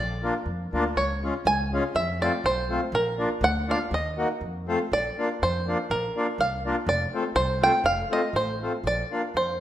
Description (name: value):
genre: alpine folk, alpine dance band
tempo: 122 BPM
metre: 2/4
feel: swing 54% on 8ths, rubato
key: unclear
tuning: A4 = 440 Hz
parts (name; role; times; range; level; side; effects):
- bluegrass banjo; melody; 0.0-9.6 s; Bb4 to Ab5; -25 LUFS; right 1 dB; none
- upright bass; bass; 0.0-9.6 s; F1 to F2; -31 LUFS; equal; none
- accordion; accompaniment; 0.2-9.2 s; Ab3 to Gb4; -28 LUFS; left 2 dB; none
room: wet recital hall reverb, RT60 1.4 s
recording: lossy compression artefacts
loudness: -23 LUFS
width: side -12 dB against mid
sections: 0.0-4.9 A section; 4.9-9.6 B section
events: none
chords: 0.0 Bb; 1.0 Db; 2.0 F; 2.9 Bb; 3.9 Ebm; 4.4 F7; 4.9 Bb; 6.9 F; 8.8 Bb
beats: 0.47 | 0.97 1.47 | 1.96 2.45 | 2.93 3.42 | 3.91 4.41 | 4.91 5.41 | 5.90 6.39 | 6.88 7.36 | 7.85 8.34 | 8.85 9.35